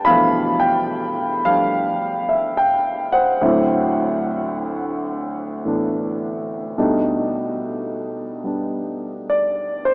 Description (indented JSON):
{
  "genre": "solo jazz",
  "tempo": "72 BPM",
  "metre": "4/4",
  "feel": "swing 66% on 8ths",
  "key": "unclear",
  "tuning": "A4 = 440 Hz",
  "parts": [
    { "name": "dark concert grand piano", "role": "solo", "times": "0.0-9.9 s", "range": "D2 to B5", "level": "-18 LUFS", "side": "equal", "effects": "none" }
  ],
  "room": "wet huge ambient reverb, RT60 7.7 s",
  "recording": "in a vast, echoing space, small speaker sound",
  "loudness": "-18 LUFS",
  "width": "side -28 dB against mid",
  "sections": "0.0-9.9 A section",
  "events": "none",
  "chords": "0.0 G13; 3.4 D13; 6.8 B7alt",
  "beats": "| 0.07 0.90 1.74 2.58 | 3.42 4.26 5.09 5.93 | 6.77 7.61 8.45 9.29"
}